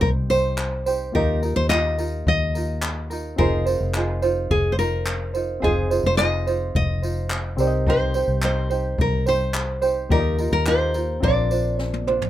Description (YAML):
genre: acoustic pop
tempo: 107 BPM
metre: 4/4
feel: straight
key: Eb major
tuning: A4 = 440 Hz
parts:
  - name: nylon-string guitar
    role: melody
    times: 0.0-12.0 s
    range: Ab4 to Eb5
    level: -24 LUFS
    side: left 1 dB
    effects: none
  - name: reed electric piano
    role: accompaniment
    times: 0.0-12.3 s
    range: Bb3 to Eb5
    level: -32 LUFS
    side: left 2 dB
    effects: none
  - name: tenor ukulele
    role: accompaniment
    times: 0.0-12.3 s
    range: D4 to C5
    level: -26 LUFS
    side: right 4 dB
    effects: none
  - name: vintage muted fingered electric bass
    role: bass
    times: 0.0-12.3 s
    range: F1 to Eb2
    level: -24 LUFS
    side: left 1 dB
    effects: none
  - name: jazz brush drum kit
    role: drums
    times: 0.0-12.3 s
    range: handclaps, kick drum, snare drum, tambourine, toms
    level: -27 LUFS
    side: left 1 dB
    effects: none
room: little or no reverb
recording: minimal, uncompressed stereo recording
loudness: -19 LUFS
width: side -13 dB against mid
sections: 0.0-12.3 A section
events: drum fill 11.8-12.3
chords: 0.0 Cm7; 1.1 Ebadd9; 3.4 Fm7; 7.6 Cm7; 10.1 Ebadd9; 11.2 Bbadd9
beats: 0.03 0.59 | 1.15 1.71 2.27 2.83 | 3.39 3.95 4.51 5.07 | 5.63 6.19 6.75 7.31 | 7.87 8.43 8.99 9.55 | 10.11 10.67 11.23 11.79